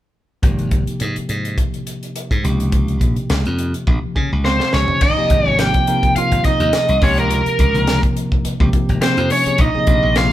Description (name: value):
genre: electric jazz fusion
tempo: 105 BPM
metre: 4/4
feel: swing 55% on 16ths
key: Ab major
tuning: A4 = 440 Hz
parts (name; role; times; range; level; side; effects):
- bell-like tine electric piano; accompaniment; 0.4-10.3 s; C3 to Ab5; -22 LUFS; left 1 dB; fast stereo tremolo
- glassy slap bass; bass; 0.4-10.3 s; Ab1 to Db3; -19 LUFS; equal; none
- crisp fusion drum kit; drums; 0.4-10.3 s; crash cymbal, hi-hat, kick drum, snare drum, toms; -19 LUFS; equal; none
- biting lead guitar; melody; 4.5-10.3 s; Bb4 to G5; -17 LUFS; equal; overdrive
- hollow-body jazz guitar; second line; 4.5-10.3 s; Bb3 to G4; -25 LUFS; right 4 dB; none
room: moderate large studio reverb, RT60 0.9 s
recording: band playing live in one room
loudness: -14 LUFS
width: side -13 dB against mid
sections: 0.4-5.0 A section; 5.0-10.3 B section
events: drum fill 3.9-5.0; tine electric piano fill 3.9-5.0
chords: 0.4 Abmaj9; 2.4 Db69; 5.0 Abmaj9; 7.0 Db69; 9.6 Bb9sus4